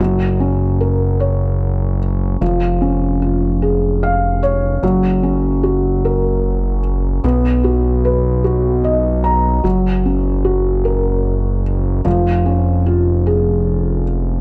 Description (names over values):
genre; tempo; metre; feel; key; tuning
six-eight pop ballad; 50 BPM (dotted quarters); 6/8; straight; F# major; A4 = 440 Hz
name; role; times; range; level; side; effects
felt-muted upright piano; accompaniment; 0.0-14.4 s; E#3 to A#5; -20 LUFS; equal; none
fat analog bass; bass; 0.0-14.4 s; E#1 to B1; -19 LUFS; equal; none
room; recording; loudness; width
moderate recital hall reverb, RT60 1.6 s; dark, warm production; -16 LUFS; mono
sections
0.0-14.4 A section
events
felt piano fill 3.6-4.8, 8.4-9.7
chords
0.0 F#; 2.4 C#/E#; 4.8 F#; 7.2 B5; 9.7 F#; 12.1 C#/E#